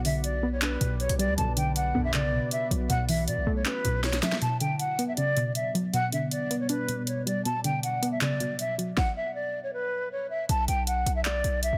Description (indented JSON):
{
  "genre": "hip hop, trap",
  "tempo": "158 BPM",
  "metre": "4/4",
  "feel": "half-time",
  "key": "B minor",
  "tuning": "A4 = 440 Hz",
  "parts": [
    { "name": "warbly dusty pluck", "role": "accompaniment", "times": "0.0-9.0 s", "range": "B2 to D4", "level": "-32 LUFS", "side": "equal", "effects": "chorus, low-pass filter" },
    { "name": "deep dark ambient pad", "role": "sustained chords", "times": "0.0-9.0 s", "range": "B2 to D5", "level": "-41 LUFS", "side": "equal", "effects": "chorus, built-in reverb" },
    { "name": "hard-hitting 808-style bass", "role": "bass", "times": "0.0-4.2, 10.5-11.8 s", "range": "B1 to B2", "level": "-32 LUFS", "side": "equal", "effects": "none" },
    { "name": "trap drum kit", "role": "drums", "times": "0.0-11.7 s", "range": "handclaps, hi-hat, kick drum, snare drum", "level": "-33 LUFS", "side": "equal", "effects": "overdrive" },
    { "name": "breathy concert flute", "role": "melody", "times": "0.1-11.8 s", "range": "B4 to A5", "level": "-32 LUFS", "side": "equal", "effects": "low-pass filter" },
    { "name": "mellow synth brass", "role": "stabs", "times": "1.4-2.2 s", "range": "F#2 to D3", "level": "-39 LUFS", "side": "equal", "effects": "chorus" }
  ],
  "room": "light reverb",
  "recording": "dense, heavily limited modern master",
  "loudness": "-28 LUFS",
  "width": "mono",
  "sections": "0.0-4.4 A section; 4.4-10.5 B section; 10.5-11.8 C section",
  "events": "drum fill 4.0-4.4; stop 9.0-10.5",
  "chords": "0.0 G/B; 1.4 Bmadd9; 2.9 F#m7/B; 4.4 Bmadd9; 5.9 G/B; 7.5 Bmadd9; 9.0 N.C.; 10.5 Bm"
}